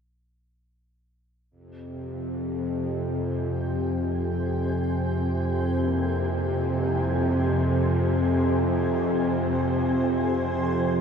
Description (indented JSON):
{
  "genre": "dark ambient drone",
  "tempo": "free time",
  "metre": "none",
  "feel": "none",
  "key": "F harmonic minor",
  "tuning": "A4 = 440 Hz",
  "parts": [
    { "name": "bowed-like drone", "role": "drone", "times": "1.8-11.0 s", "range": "F2 to C3", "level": "-23 LUFS", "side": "equal", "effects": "built-in reverb" },
    { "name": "granular cloud pad", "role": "sustained chords", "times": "3.1-11.0 s", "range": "C5 to Ab5", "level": "-33 LUFS", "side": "equal", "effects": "built-in reverb" },
    { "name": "dark baby grand piano", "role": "arpeggios", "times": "5.8-11.0 s", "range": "C2 to E4", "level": "-39 LUFS", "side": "right 1 dB", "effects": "none" }
  ],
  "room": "wet cathedral reverb, RT60 7.1 s",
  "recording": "faint mains hum",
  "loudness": "-23 LUFS",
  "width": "side -7 dB against mid",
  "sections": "1.5-11.0 A section",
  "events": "fade-in on ambient pad 1.5-11.0",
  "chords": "1.5 Fm"
}